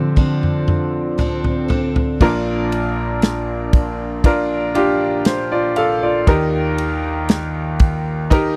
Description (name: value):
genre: pop ballad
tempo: 59 BPM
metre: 4/4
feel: straight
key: Bb major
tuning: A4 = 441 Hz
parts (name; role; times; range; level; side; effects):
- clear concert grand piano; accompaniment; 0.0-8.6 s; Bb1 to F5; -20 LUFS; equal; none
- picked steel-string acoustic guitar; arpeggios; 0.0-2.2 s; D3 to A4; -26 LUFS; equal; tape echo
- swell; sound effects; 1.0-2.2 s; none; -35 LUFS; equal; none
- natural country drum kit; drums; 0.2-8.6 s; crash cymbal, kick drum, ride cymbal, snare drum, toms; -18 LUFS; equal; none
room: little or no reverb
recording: dry, close 1970s-style studio recording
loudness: -18 LUFS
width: mono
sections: 0.0-2.2 A section; 2.2-8.6 B section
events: drum fill 0.0-2.2; grand piano solo 0.0-2.2; swell 1.0-2.2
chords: 0.0 Dm7; 2.2 Bb; 6.3 Eb